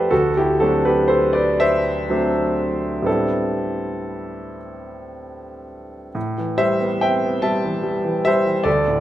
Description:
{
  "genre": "classical, impressionist solo piano",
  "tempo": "36-50 BPM (dotted quarters)",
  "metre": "6/8",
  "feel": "rubato",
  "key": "A minor",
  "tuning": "A4 = 439 Hz",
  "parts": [
    { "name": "clear concert grand piano", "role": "solo", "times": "0.0-9.0 s", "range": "D2 to A5", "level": "-18 LUFS", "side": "equal", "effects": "none" }
  ],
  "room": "wet recital hall reverb, RT60 1.6 s",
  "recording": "none",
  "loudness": "-17 LUFS",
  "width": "side -13 dB against mid",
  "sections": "0.0-6.2 A section; 6.2-9.0 B section",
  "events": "none",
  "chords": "0.1 D9; 3.1 Am11; 6.2 Am9"
}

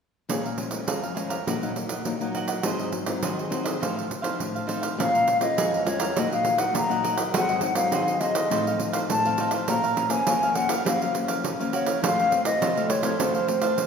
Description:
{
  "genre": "samba and choro",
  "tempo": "102 BPM",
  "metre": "4/4",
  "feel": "straight",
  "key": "Bb minor",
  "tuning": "A4 = 440 Hz",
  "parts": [
    { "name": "cavaquinho", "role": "accompaniment", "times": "0.3-13.9 s", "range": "Eb4 to Bb5", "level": "-32 LUFS", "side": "right 4 dB", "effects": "none" },
    { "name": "nylon-string guitar", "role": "accompaniment", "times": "0.3-13.9 s", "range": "F2 to F4", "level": "-29 LUFS", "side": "left 4 dB", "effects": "none" },
    { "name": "pandeiro", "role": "percussion", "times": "0.3-13.9 s", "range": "none", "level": "-28 LUFS", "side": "right 4 dB", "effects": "none" },
    { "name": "mellow hollow silver concert flute", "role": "melody", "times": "5.0-13.9 s", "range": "C5 to Bb5", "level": "-24 LUFS", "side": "left 1 dB", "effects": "none" }
  ],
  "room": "wet scoring stage reverb, RT60 1.6 s",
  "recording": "recorded in a church or concert hall",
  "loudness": "-22 LUFS",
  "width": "side -6 dB against mid",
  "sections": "0.3-5.0 A section; 5.0-13.9 B section",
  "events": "none",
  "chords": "0.3 Bbm7; 1.5 Ebm/Bb; 2.6 Ab7; 3.8 F7/A; 5.0 Bbm7; 6.2 Ebm/Bb; 7.3 Ab7; 8.5 F7/A; 9.7 Bbm; 10.8 Gbmaj7; 12.0 F"
}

